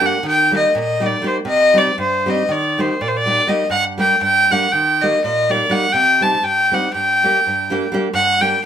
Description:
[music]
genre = balkan folk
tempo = 243 BPM (eighths)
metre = 9/8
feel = straight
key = G harmonic minor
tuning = A4 = 435 Hz
[part]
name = rich fiddle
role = melody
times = 0.0-8.6 s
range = C5 to A5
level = -15 LUFS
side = equal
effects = none
[part]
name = nylon-string guitar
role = accompaniment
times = 0.0-8.6 s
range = G2 to G4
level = -21 LUFS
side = right 1 dB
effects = none
[sound]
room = moderate studio reverb, RT60 0.6 s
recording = minimal, uncompressed stereo recording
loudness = -14 LUFS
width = side -9 dB against mid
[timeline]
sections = 0.0-8.1 A section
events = none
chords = 0.2 Eb; 1.5 Cm; 2.5 Eb; 3.7 Gm; 4.7 Eb; 5.9 Cm; 6.9 Gm

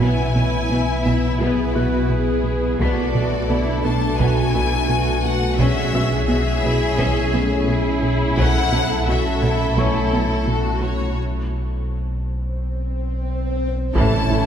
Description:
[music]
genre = cinematic, hybrid orchestral and electronic film score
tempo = 86 BPM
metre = 4/4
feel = straight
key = unclear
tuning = A4 = 440 Hz
[part]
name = rich studio violin section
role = melody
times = 0.0-14.5 s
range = A4 to A5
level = -26 LUFS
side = left 4 dB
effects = none
[part]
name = rich symphonic violin section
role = second line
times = 0.0-14.5 s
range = B3 to A4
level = -27 LUFS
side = left 3 dB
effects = none
[part]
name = rich symphonic viola section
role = accompaniment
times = 0.0-14.5 s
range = E3 to G#4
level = -27 LUFS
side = equal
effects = none
[part]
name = dark French horn section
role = sustained chords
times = 0.0-14.5 s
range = E3 to G#4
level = -29 LUFS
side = left 4 dB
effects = none
[part]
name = warbly tape-like pad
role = sustained chords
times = 0.1-14.5 s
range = E3 to E5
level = -27 LUFS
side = equal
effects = chorus, built-in reverb
[part]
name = plucky analog bass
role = riff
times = 0.0-14.5 s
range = A2 to B3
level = -25 LUFS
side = right 2 dB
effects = none
[part]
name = dark symphonic cello section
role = bass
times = 0.0-14.4 s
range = A2 to B2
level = -29 LUFS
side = right 2 dB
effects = none
[part]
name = rich symphonic double bass section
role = bass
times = 0.0-14.4 s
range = A1 to B1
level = -28 LUFS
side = right 3 dB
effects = none
[part]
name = sub bass with octave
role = bass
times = 0.0-14.5 s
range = A1 to B1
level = -24 LUFS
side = equal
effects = none
[part]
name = warm grand piano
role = texture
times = 0.0-14.5 s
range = A4 to B6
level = -35 LUFS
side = left 1 dB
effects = none
[part]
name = taiko ensemble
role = drums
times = 2.8-14.5 s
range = none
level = -29 LUFS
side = equal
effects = none
[part]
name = swell and impact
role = sound effects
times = 12.5-14.5 s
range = none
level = -29 LUFS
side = left 1 dB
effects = none
[part]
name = clear trombone section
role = sustained chords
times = 13.9-14.5 s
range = E3 to C#4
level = -27 LUFS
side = right 2 dB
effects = none
[part]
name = warm tuba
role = bass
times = 13.9-14.4 s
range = A1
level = -29 LUFS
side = right 4 dB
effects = none
[sound]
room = wet cathedral reverb, RT60 4.2 s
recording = recorded in a church or concert hall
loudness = -17 LUFS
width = side -8 dB against mid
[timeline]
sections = 0.0-14.0 A section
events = break 11.2-14.0; swell 12.5-14.0; drum fill 12.9-14.0; impact 14.0-14.5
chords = 0.0 E/B; 2.8 Bm7; 5.6 C#m/B; 8.4 A/B; 11.2 N.C.; 14.0 A

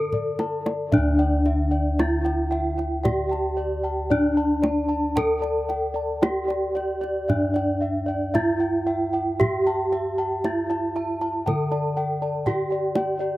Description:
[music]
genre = Javanese gamelan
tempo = 57 BPM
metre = 4/4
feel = straight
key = unclear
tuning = A4 = 440 Hz
[part]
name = gamelan-type bronze metallophone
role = melody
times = 0.0-13.4 s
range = D4 to A4+25c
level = -24 LUFS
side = equal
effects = slapback echo
[part]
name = gamelan-type bossed gongs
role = bass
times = 0.0-13.4 s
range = D2 to A4+25c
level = -28 LUFS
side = equal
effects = none
[part]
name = gamelan-type bossed gongs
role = arpeggios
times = 0.1-13.4 s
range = D5 to A5+25c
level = -30 LUFS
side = left 3 dB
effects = slapback echo
[part]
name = kendang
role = percussion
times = 0.1-13.2 s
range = none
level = -26 LUFS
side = right 1 dB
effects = none
[part]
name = gamelan-type bronze metallophone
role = arpeggios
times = 0.9-13.4 s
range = D5 to A5+25c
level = -31 LUFS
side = right 3 dB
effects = slapback echo
[sound]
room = little or no reverb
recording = recorded outdoors, with no room sound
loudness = -21 LUFS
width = side -17 dB against mid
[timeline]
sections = 0.9-13.4 A section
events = drum fill 0.0-0.9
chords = none

